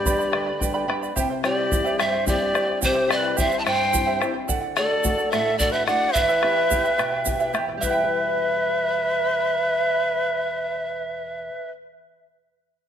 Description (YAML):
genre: andean folk, Andean ensemble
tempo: 72 BPM (dotted quarters)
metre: 6/8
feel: straight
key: E minor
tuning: A4 = 442 Hz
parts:
  - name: breathy bright pan flute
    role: melody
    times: 0.0-11.7 s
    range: C5 to A5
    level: -23 LUFS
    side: right 2 dB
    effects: none
  - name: breathy bright large quena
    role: second line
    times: 0.0-11.7 s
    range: G4 to E5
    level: -26 LUFS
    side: left 3 dB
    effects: none
  - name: charango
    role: accompaniment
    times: 0.0-11.8 s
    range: E4 to B5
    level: -28 LUFS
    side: right 4 dB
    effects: none
  - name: flamenco guitar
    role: accompaniment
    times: 0.0-11.9 s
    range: E2 to B4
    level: -31 LUFS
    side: left 6 dB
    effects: none
  - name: bombo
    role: percussion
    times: 0.1-8.1 s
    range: none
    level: -28 LUFS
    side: left 2 dB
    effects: none
  - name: tube shaker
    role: percussion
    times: 0.1-8.1 s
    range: none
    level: -32 LUFS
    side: right 7 dB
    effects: none
room: light reverb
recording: lossy compression artefacts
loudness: -20 LUFS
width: side -8 dB against mid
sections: 0.0-7.8 A section; 7.8-11.1 B section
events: none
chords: 0.0 G; 1.2 C; 4.5 D; 6.2 Em